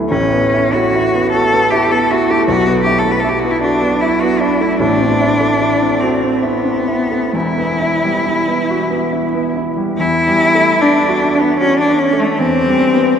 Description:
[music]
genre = classical, impressionist duo for cello and grand piano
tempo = 64-79 BPM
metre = 3/4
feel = rubato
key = E minor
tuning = A4 = 440 Hz
[part]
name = clear grand piano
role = accompaniment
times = 0.0-13.2 s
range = E1 to G4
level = -16 LUFS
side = right 1 dB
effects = none
[part]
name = clear cello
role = melody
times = 0.1-13.2 s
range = A3 to B4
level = -14 LUFS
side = left 1 dB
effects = none
[sound]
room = wet cathedral reverb, RT60 4.4 s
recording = none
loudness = -12 LUFS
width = side -8 dB against mid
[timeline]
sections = 0.0-10.0 A section; 10.0-13.2 B section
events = none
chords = 0.1 Asus2; 2.5 B7sus4; 4.8 Am6; 7.3 Emadd9; 10.0 Em11; 12.4 Cmaj7/E

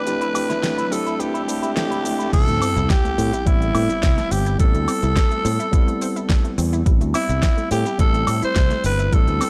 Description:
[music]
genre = nu-disco, nu disco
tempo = 106 BPM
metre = 4/4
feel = straight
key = A minor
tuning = A4 = 440 Hz
[part]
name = growling tenor saxophone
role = melody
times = 0.0-9.5 s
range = E4 to C5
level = -26 LUFS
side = equal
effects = tape echo
[part]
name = mellow tine electric piano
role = accompaniment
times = 0.0-9.5 s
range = G3 to E4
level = -29 LUFS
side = equal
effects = sidechain pumping
[part]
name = modern bright fingered electric bass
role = bass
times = 0.0-9.4 s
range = G1 to C3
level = -25 LUFS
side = equal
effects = tube saturation, high-pass filter
[part]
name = riser and sub drop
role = sound effects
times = 0.1-4.6 s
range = none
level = -33 LUFS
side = equal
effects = none
[part]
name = electric guitar with an envelope filter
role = riff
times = 0.1-2.3 s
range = E4 to G4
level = -32 LUFS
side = equal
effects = subtle chorus
[part]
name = pop drum kit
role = drums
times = 0.1-9.5 s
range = crash cymbal, hi-hat, shaker, snare drum, woodblock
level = -30 LUFS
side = equal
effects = studio ambience
[part]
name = unison pluck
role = arpeggios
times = 2.3-9.5 s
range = G3 to E4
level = -34 LUFS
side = equal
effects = sidechain pumping, tape echo
[part]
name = electronic kick drum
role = drums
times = 2.3-9.2 s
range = none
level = -20 LUFS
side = equal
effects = studio ambience
[sound]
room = digital ambience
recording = dry, gritty hardware recording, cassette tape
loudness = -20 LUFS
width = mono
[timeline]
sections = 0.0-2.3 A section; 2.3-9.5 B section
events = build-up 0.0-2.3; drop 2.3-9.5; impact 2.3-4.6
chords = 0.0 C6; 2.3 Am7

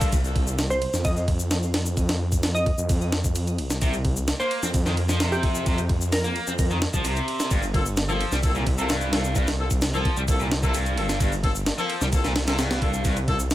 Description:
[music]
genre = breakbeat, breaks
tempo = 130 BPM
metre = 4/4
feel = straight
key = unclear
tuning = A4 = 441 Hz
[part]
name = overdriven electric guitar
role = riff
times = 0.0-0.1, 3.8-13.2 s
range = G2 to C4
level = -29 LUFS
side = equal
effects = vintage 12-bit sampler grit, digital delay
[part]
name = clear horn section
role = stabs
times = 0.0-0.1, 7.7-13.4 s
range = Bb3 to A4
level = -31 LUFS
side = left 3 dB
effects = digital delay
[part]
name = breakbeat sampler-style drum kit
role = drums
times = 0.0-13.5 s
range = hi-hat, kick drum, ride cymbal, snare drum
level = -25 LUFS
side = equal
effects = none
[part]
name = shaker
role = drums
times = 0.0-13.5 s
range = none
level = -35 LUFS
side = left 3 dB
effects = none
[part]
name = detuned saw bass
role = bass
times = 0.1-13.5 s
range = G1 to F2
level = -26 LUFS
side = equal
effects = none
[part]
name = glassy wavetable pluck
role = melody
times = 0.7-6.5 s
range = G4 to Eb5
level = -30 LUFS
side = right 1 dB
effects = chorus, old record sound, digital delay
[sound]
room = light reverb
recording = none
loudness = -21 LUFS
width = side -14 dB against mid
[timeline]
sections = 0.1-13.5 A section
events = none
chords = 0.1 N.C.; 7.5 Gm11

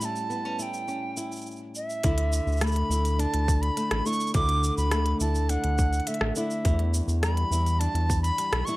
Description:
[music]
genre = folktronica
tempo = 104 BPM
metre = 4/4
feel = straight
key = unclear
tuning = A4 = 440 Hz
[part]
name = bright reedy wooden flute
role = melody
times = 0.0-8.8 s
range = E5 to D6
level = -30 LUFS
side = right 1 dB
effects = plate reverb, digital delay
[part]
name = flamenco guitar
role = arpeggios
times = 0.0-8.8 s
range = E2 to E4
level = -31 LUFS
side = equal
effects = plate reverb
[part]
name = organic electronic drum kit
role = drums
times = 0.0-8.8 s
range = hi-hat, rim click, shaker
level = -32 LUFS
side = equal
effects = none
[part]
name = round analog bass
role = bass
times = 2.0-8.6 s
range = A1 to E2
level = -25 LUFS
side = equal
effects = none
[part]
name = electronic kick drum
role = drums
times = 2.0-8.2 s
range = none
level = -25 LUFS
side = equal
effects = none
[sound]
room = light reverb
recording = vinyl crackle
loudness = -23 LUFS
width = side -19 dB against mid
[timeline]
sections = 0.0-2.0 A section; 2.0-8.8 B section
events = none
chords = 0.0 A7; 2.0 Dsus2; 6.7 Em7

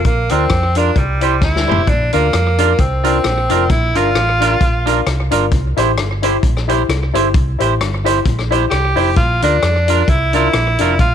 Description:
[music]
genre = ska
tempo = 132 BPM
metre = 4/4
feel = swing 56% on 8ths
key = unclear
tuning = A4 = 440 Hz
[part]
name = bright tenor saxophone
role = melody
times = 0.0-5.3, 8.7-11.1 s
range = G3 to G4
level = -17 LUFS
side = right 1 dB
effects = none
[part]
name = hollow-body short-scale fingered electric bass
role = bass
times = 0.0-11.1 s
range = F1 to F2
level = -18 LUFS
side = equal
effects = none
[part]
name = vintage drum kit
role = drums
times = 0.0-11.1 s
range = hi-hat, kick drum, rim click, snare drum, toms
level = -18 LUFS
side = left 2 dB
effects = slapback echo
[part]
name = semi-hollow electric guitar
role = accompaniment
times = 0.3-10.9 s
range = D4 to C5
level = -20 LUFS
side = right 13 dB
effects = wide subtle chorus
[part]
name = dark upright piano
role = stabs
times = 0.3-10.9 s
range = D4 to C5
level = -21 LUFS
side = left 10 dB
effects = none
[sound]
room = light reverb, small room ambience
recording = 1960s-style stereo with parts hard left and right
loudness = -12 LUFS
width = side -9 dB against mid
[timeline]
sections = 0.0-1.9 A section; 1.9-11.1 B section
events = drum fill 1.4-1.9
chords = 0.1 Bb; 1.0 C; 1.9 Bb; 5.5 C; 9.2 Bb

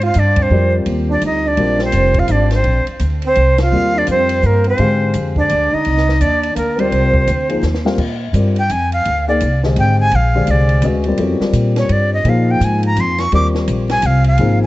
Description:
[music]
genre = modal jazz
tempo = 169 BPM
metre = 3/4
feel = swing 63% on 8ths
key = Bb mixolydian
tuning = A4 = 441 Hz
[part]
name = breathy bright jazz flute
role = melody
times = 0.0-14.7 s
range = Bb4 to D6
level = -17 LUFS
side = equal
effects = none
[part]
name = clear trombone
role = second line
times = 0.0-7.6 s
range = Bb3 to F4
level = -21 LUFS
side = right 4 dB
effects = analog delay
[part]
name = upright bass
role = bass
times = 0.0-14.7 s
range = F1 to Bb2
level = -16 LUFS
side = equal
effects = none
[part]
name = compact cocktail drum kit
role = drums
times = 0.0-14.5 s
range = crash cymbal, hi-hat, kick drum, ride cymbal, snare drum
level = -25 LUFS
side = equal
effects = none
[part]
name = dark baby grand piano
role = accompaniment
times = 0.5-14.7 s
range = D3 to F5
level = -19 LUFS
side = left 3 dB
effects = none
[sound]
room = light reverb, small room ambience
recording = dark, warm production, vinyl crackle, nothing above 8.0 kHz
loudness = -12 LUFS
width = side -17 dB against mid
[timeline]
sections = 0.0-8.0 A section; 8.0-14.7 B section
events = band accent 0.3, 3.5; drum fill 7.6-8.0; flute solo 8.0-14.7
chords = 0.0 Bb13; 3.7 Ab6; 8.0 Bb13; 12.2 Ab6

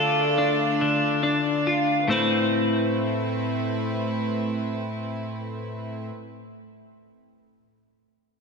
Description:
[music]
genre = rock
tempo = 70 BPM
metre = 4/4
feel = straight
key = A minor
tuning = A4 = 441 Hz
[part]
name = overdriven electric guitar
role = melody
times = 0.0-1.2 s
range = A4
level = -34 LUFS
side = right 1 dB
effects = none
[part]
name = rich chamber string section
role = sustained chords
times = 0.0-6.1 s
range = A3 to D5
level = -30 LUFS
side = right 2 dB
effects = none
[part]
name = twelve-string electric guitar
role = arpeggios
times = 0.0-6.1 s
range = A2 to B4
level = -23 LUFS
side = left 1 dB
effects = slapback echo, tape echo
[sound]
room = wet lush hall reverb, RT60 3.0 s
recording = big arena sound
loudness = -22 LUFS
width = side -4 dB against mid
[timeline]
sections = 0.0-2.1 A section; 2.1-5.5 B section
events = none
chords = 0.0 Dm; 2.1 Amadd9

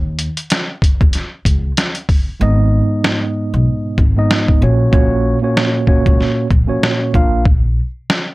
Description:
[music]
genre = hip hop, boom-bap hip-hop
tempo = 95 BPM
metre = 4/4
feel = swing 57% on 16ths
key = G# minor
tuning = A4 = 439 Hz
[part]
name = upright bass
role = bass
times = 0.0-7.8 s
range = G#1 to D#2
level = -16 LUFS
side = equal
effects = none
[part]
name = trip hop sampler-style drum kit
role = drums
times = 0.2-8.3 s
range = hi-hat, kick drum, rim click, snare drum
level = -14 LUFS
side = equal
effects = none
[part]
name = mellow tine electric piano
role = accompaniment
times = 2.4-7.4 s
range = G#2 to E#5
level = -16 LUFS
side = right 1 dB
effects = medium stereo tremolo
[sound]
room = little or no reverb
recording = none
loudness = -12 LUFS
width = side -20 dB against mid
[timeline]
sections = 0.0-8.3 A section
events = break 0.0-2.4, 7.5-8.3; hi-hats muted 2.4-8.3; kick muted 2.4-3.7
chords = 0.0 C#sus2; 2.4 G#m; 4.6 F#/A#; 7.1 A#

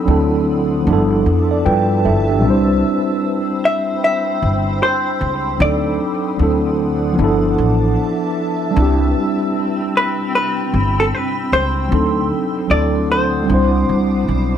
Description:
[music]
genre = lo-fi hip hop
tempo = 76 BPM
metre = 4/4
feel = swing 62% on 16ths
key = C major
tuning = A4 = 440 Hz
[part]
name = mellow tine electric piano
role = accompaniment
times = 0.0-14.6 s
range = F3 to G5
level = -18 LUFS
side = right 1 dB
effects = medium stereo tremolo
[part]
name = granular cloud pad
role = sustained chords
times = 0.0-14.6 s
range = C4 to E6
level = -25 LUFS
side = equal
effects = built-in reverb
[part]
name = upright bass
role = bass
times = 0.1-14.6 s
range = G1 to G2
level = -18 LUFS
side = equal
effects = none
[part]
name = vintage hollow-body jazz guitar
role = melody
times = 3.7-14.2 s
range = A4 to E5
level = -19 LUFS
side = left 1 dB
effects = none
[sound]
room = moderate studio reverb, RT60 0.5 s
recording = none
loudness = -14 LUFS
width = side -9 dB against mid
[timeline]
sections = 0.0-14.6 A section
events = tine electric piano fill 1.3-2.4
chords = 0.1 D7; 0.9 G13; 2.4 Cmaj7; 5.6 D7b9; 6.4 D7; 7.2 G13; 8.8 Cmaj7; 11.9 D7b9; 12.7 D7; 13.5 Cmaj9

